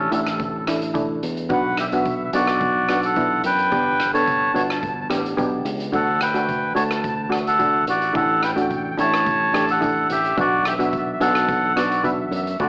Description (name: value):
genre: calypso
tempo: 108 BPM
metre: 4/4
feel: swing 53% on 16ths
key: unclear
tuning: A4 = 440 Hz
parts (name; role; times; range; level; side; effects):
- melodica; melody; 0.0-12.7 s; C#4 to A5; -20 LUFS; equal; cassette tape, plate reverb, analog delay
- fingered electric bass; bass; 0.0-12.7 s; G1 to F#2; -28 LUFS; equal; none
- steel pan; accompaniment; 0.1-12.7 s; A3 to A4; -24 LUFS; equal; cassette tape, plate reverb
- street-band drum kit; drums; 0.1-12.7 s; hi-hat, kick drum, rim click; -30 LUFS; equal; none
room: wet small room ambience, RT60 0.5 s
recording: home recording on cassette, AM radio sound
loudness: -18 LUFS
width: side -28 dB against mid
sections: 0.0-12.7 A section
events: none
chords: 0.0 Asus4; 1.5 Bm; 3.7 G; 5.9 D; 8.2 Asus4; 10.4 Bm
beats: 0.40 0.95 | 1.51 2.06 2.61 3.17 | 3.72 4.28 4.83 5.38 | 5.94 6.49 7.04 7.60 | 8.15 8.71 9.26 9.82 | 10.38 10.93 11.49 12.05 | 12.60